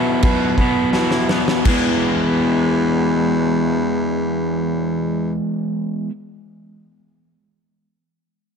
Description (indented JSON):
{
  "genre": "rock, shoegaze and dream pop",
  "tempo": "82 BPM",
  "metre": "4/4",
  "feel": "straight",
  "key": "E major",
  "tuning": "A4 = 440 Hz",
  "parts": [
    { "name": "crunchy overdriven guitar", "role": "riff", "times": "0.0-6.1 s", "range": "B2 to E4", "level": "-19 LUFS", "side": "equal", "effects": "lush chorus" },
    { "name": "clear baritone saxophone", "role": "bass", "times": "0.0-5.3 s", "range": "E2 to B2", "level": "-22 LUFS", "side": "equal", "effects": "none" },
    { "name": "huge arena drum kit", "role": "drums", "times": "0.2-1.8 s", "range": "crash cymbal, kick drum, snare drum", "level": "-21 LUFS", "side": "equal", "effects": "none" }
  ],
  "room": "light reverb, small room ambience",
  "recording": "dark, warm production",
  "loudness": "-16 LUFS",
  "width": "side -6 dB against mid",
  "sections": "0.0-1.7 A section; 1.7-4.6 B section",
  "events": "slowing down 0.0-1.7; drum fill 0.9-1.7",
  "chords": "0.0 Bsus4; 1.7 E"
}